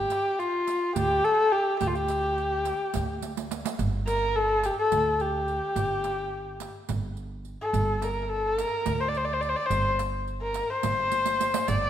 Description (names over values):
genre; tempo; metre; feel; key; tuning
Turkish makam ensemble; 212 BPM (eighths); 7/8; straight; G makam ussak; A4 = 441 Hz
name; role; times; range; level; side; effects
warm kamancheh; melody; 0.0-11.9 s; F4 to D5; -25 LUFS; left 1 dB; none
upright bass; bass; 0.0-11.9 s; G1 to D2; -32 LUFS; right 1 dB; none
darbuka; percussion; 0.1-11.9 s; none; -37 LUFS; right 5 dB; none
riq; percussion; 0.1-11.8 s; none; -36 LUFS; right 8 dB; none
room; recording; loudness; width
moderate scoring stage reverb, RT60 1.5 s; minimal, uncompressed stereo recording; -24 LUFS; side -10 dB against mid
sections
0.0-3.8 A section; 3.8-11.9 B section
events
drum fill 3.2-3.8, 11.1-11.7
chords
none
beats
0.11 0.39 0.68 0.96 1.24 1.52 | 1.80 2.09 2.37 2.65 2.93 3.21 3.50 | 3.78 4.06 4.34 4.63 4.91 5.19 5.47 | 5.76 6.04 6.32 6.60 6.89 7.17 7.45 | 7.73 8.02 8.30 8.58 8.86 9.15 9.43 | 9.71 9.99 10.28 10.56 10.84 11.12 11.40 | 11.69